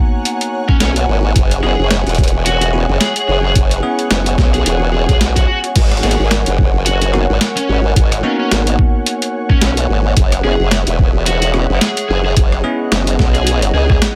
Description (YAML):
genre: glitch hop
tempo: 109 BPM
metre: 4/4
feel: swing 57% on 16ths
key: unclear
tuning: A4 = 440 Hz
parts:
  - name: dark analog pad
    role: sustained chords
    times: 0.0-14.2 s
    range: G#4 to A#5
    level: -27 LUFS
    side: equal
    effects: chorus, sidechain pumping
  - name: bell-like tine electric piano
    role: stabs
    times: 0.0-14.2 s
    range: A#3 to G#4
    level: -25 LUFS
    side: equal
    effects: phaser, sidechain pumping, dub echo
  - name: ethereal airy pad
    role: texture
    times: 0.0-14.2 s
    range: C#5 to F#5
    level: -28 LUFS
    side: equal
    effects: ensemble chorus, built-in reverb, sidechain pumping
  - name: boom bap sampler-style drum kit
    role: drums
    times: 0.3-14.1 s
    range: crash cymbal, hi-hat, rim click, snare drum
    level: -20 LUFS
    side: equal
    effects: overdrive
  - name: high-gain lead guitar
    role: melody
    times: 0.7-14.0 s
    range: C#4 to G#4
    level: -24 LUFS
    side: equal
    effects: distortion, dub echo
  - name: electronic kick drum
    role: drums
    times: 0.7-14.0 s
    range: none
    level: -15 LUFS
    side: equal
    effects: overdrive
  - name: formant-sweep wobble bass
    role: bass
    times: 0.8-14.0 s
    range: E1 to C#2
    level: -17 LUFS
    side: equal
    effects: chorus
room: digital ambience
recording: none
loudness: -14 LUFS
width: mono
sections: 0.0-14.2 A section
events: none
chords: 0.0 G#m9; 1.4 F#9sus4; 5.8 G#m9; 10.2 F#9sus4